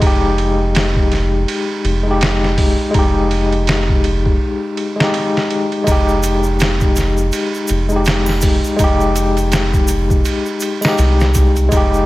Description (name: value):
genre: trip hop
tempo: 82 BPM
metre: 4/4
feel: swing 58% on 16ths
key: F minor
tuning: A4 = 440 Hz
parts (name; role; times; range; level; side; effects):
- overdriven tine electric piano; accompaniment; 0.0-12.1 s; Ab3 to G4; -17 LUFS; left 2 dB; tremolo, tape echo
- round analog bass; bass; 0.0-12.1 s; F1 to C2; -17 LUFS; equal; none
- trip hop sampler-style drum kit; drums; 0.0-11.9 s; hi-hat, kick drum, ride cymbal, snare drum; -18 LUFS; equal; small room ambience
- egg shaker and triangle; percussion; 5.9-12.1 s; none; -30 LUFS; right 1 dB; none
room: digital ambience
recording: none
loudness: -13 LUFS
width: side -18 dB against mid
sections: 0.0-12.1 A section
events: break 4.4-5.9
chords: 0.0 Fm7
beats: | 0.01 0.75 1.48 2.21 | 2.94 3.67 4.41 5.14 | 5.87 6.60 7.33 8.06 | 8.79 9.53 10.26 10.99 | 11.72